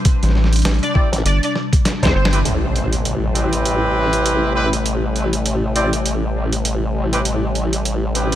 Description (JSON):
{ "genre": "glitch hop", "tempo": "100 BPM", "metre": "4/4", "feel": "swing 58% on 16ths", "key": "A minor", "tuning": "A4 = 440 Hz", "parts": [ { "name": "warbly tape-like pad", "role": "sustained chords", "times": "0.0-8.4 s", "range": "C3 to D4", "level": "-25 LUFS", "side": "left 2 dB", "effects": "chorus, built-in reverb, sidechain pumping" }, { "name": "boom bap sampler-style drum kit", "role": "drums", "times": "0.1-8.4 s", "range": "hi-hat, snare drum", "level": "-22 LUFS", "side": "right 1 dB", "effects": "none" }, { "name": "electronic kick drum", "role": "drums", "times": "0.1-2.1 s", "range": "none", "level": "-16 LUFS", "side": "equal", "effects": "none" }, { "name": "rubbery square bass", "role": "bass", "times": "0.2-2.4 s", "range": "G1 to A1", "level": "-15 LUFS", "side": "equal", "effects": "none" }, { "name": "sync lead", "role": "melody", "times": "0.8-2.3 s", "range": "C5 to D5", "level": "-26 LUFS", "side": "equal", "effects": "ensemble chorus, dub echo" }, { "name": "brilliant horn section", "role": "stabs", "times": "0.9-8.4 s", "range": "C4 to D5", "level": "-22 LUFS", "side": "right 1 dB", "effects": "vintage 12-bit sampler grit, sidechain pumping, dub echo" }, { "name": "formant-sweep wobble bass", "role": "bass", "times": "1.1-8.4 s", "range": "A1 to E2", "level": "-20 LUFS", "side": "equal", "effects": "chorus" }, { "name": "impact", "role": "sound effects", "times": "2.5-4.9 s", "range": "none", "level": "-26 LUFS", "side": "equal", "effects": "none" } ], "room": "light reverb", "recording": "none", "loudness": "-16 LUFS", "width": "side -12 dB against mid", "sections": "0.0-2.5 A section; 2.5-8.4 B section", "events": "drum fill 1.9-2.5; band accent 2.3; impact 2.5-4.9", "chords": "0.0 Am7" }